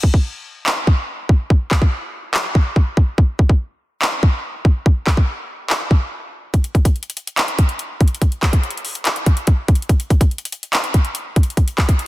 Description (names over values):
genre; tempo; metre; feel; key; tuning
hip hop; 143 BPM; 4/4; half-time; none; none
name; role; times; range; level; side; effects
trap drum kit; drums; 0.0-12.1 s; handclaps, hi-hat, kick drum; -15 LUFS; equal; none
room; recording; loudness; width
light reverb; dense, heavily limited modern master; -15 LUFS; side -18 dB against mid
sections
0.0-12.1 A section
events
break 0.0-6.5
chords
none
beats
0.24 0.66 1.08 | 1.50 1.92 2.34 2.76 | 3.18 3.60 4.02 4.44 | 4.86 5.28 5.70 6.12 | 6.54 6.96 7.38 7.80 | 8.22 8.63 9.05 9.47 | 9.89 10.31 10.73 11.15 | 11.57 11.99